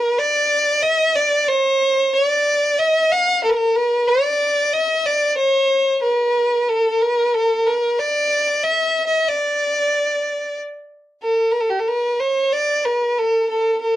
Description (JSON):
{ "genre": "arabic", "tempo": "92 BPM", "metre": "3/4", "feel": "straight", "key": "D maqam huzam", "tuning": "A4 = 441 Hz", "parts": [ { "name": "rich violin", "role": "solo", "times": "0.0-14.0 s", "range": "G4-36c to F5+44c", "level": "-16 LUFS", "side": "equal", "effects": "cassette tape" } ], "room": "moderate small room reverb, RT60 0.5 s", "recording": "home recording on cassette", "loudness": "-16 LUFS", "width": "side -14 dB against mid", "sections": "0.0-11.2 A section; 11.2-14.0 B section", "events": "none", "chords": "none" }